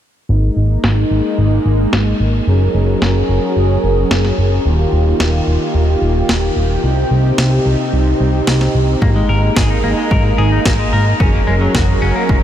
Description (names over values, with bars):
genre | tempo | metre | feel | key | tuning
synthwave | 110 BPM | 4/4 | straight | Ab major | A4 = 440 Hz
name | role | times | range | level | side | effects
soft supersaw | sustained chords | 0.3-12.4 s | C3 to Bb4 | -17 LUFS | right 1 dB | sidechain pumping, shimmer reverb
fat analog bass | bass | 0.3-12.4 s | Eb1 to C2 | -14 LUFS | equal | tube saturation
electronic snare drum | drums | 0.8-11.9 s | none | -22 LUFS | equal | low-pass filter on snare, small room ambience
clean electric guitar | arpeggios | 9.0-12.4 s | Gb3 to Bb4 | -20 LUFS | left 3 dB | spring reverb, diffuse ambient delay, shimmer reverb
electronic kick drum | drums | 9.0-12.4 s | none | -16 LUFS | equal | small room ambience
room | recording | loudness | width
moderate huge ambient reverb, RT60 8.2 s | dreamy mix soaked in reverb | -12 LUFS | side -10 dB against mid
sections
0.3-12.4 A section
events
filter sweep on analog synth bass 0.3-12.4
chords
0.3 Absus2; 2.5 Gbadd9; 4.7 Ebadd9; 6.8 Cm; 9.0 Absus2; 11.2 Gbadd9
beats
| 0.29 0.84 1.38 1.93 | 2.48 3.02 3.57 4.11 | 4.66 5.20 5.75 6.29 | 6.84 7.38 7.93 8.47 | 9.02 9.57 10.11 10.66 | 11.20 11.75 12.29